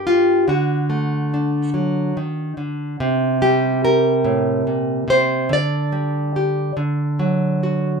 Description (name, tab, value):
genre	folk, solo fingerstyle acoustic guitar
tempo	48 BPM (dotted quarters)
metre	6/8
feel	straight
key	unclear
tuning	A4 = 440 Hz
part	nylon-string guitar	solo	0.0-8.0 s	G2 to D5	-17 LUFS	equal	none
room	moderate studio ambience, RT60 0.5 s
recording	minimal, uncompressed stereo recording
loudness	-17 LUFS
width	side -5 dB against mid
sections	0.0-8.0 A section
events	none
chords	0.5 D; 3.0 C5; 5.5 Dsus4; 6.8 D